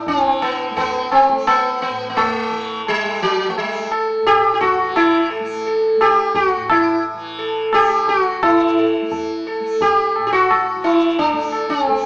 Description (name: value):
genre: indian classical, Hindustani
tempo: 86 BPM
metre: 4/4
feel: straight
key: A raga kafi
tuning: A4 = 440 Hz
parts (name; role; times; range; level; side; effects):
- sitar; melody; 0.0-12.1 s; F#3 to A4; -15 LUFS; equal; none
- tanpura; drone; 0.0-12.1 s; A2 to A3; -28 LUFS; equal; none
- tabla; percussion; 0.1-12.1 s; none; -21 LUFS; equal; none
room: moderate large studio reverb, RT60 1.2 s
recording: band playing live in one room, small speaker sound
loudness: -14 LUFS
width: side -26 dB against mid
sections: 0.0-8.4 A section; 8.4-12.1 B section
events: none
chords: none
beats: | 0.06 0.77 1.47 2.17 | 2.87 3.57 4.26 4.96 | 5.66 6.35 7.05 7.74 | 8.43 9.12 9.81 10.50 | 11.18 11.87